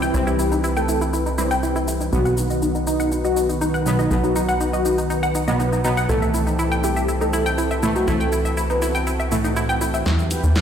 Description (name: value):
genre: melodic techno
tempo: 121 BPM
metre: 4/4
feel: straight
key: unclear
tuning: A4 = 440 Hz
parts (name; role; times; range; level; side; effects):
- wide unison lead; melody; 0.0-10.3 s; D#4 to B4; -25 LUFS; equal; sidechain pumping, tape echo
- lush unison pad; sustained chords; 0.0-10.6 s; D#3 to G5; -26 LUFS; equal; chorus, sidechain pumping
- analog pluck; arpeggios; 0.0-10.6 s; D#4 to G5; -25 LUFS; left 2 dB; chorus, vintage 12-bit sampler grit, sidechain pumping, dub echo
- tight sequencer bass; bass; 0.0-10.6 s; B1 to E2; -24 LUFS; equal; sidechain pumping
- house drum kit; drums; 0.0-10.6 s; hi-hat, shaker, snare drum; -32 LUFS; left 1 dB; sidechain pumping on perc, sidechain pumping on hats
- synth brass stab; stabs; 0.1-10.6 s; A2 to E4; -25 LUFS; right 2 dB; chorus, sidechain pumping, dub echo
- electronic kick drum; drums; 10.1-10.6 s; none; -28 LUFS; equal; high-pass filter on kick
room: moderate lush hall reverb, RT60 2.2 s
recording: played on a big sound system in a bare room, stone room reverb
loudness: -18 LUFS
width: side -8 dB against mid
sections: 0.0-10.1 A section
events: filter sweep on synth arpeggio sound 0.0-10.1; filter sweep on analog synth pad 0.0-10.1; drum fill 10.1-10.6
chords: 0.0 Cmaj7; 2.1 B; 6.1 Am7/C; 10.1 Em